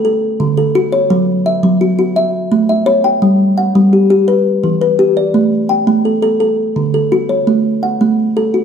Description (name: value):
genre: southern african traditional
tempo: 113 BPM (dotted quarters)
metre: 12/8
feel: straight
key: A mixolydian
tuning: A4 = 439 Hz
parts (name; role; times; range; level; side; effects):
- kalimba; solo; 0.0-8.6 s; D3 to G5; -11 LUFS; equal; none
room: moderate recital hall reverb, RT60 1.4 s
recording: none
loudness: -11 LUFS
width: side -7 dB against mid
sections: 0.0-7.5 A section; 7.5-8.6 A section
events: none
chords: 0.0 D; 1.1 F#5; 2.2 A; 3.2 N.C.; 4.3 Em; 5.3 A7sus4; 6.4 D; 7.5 A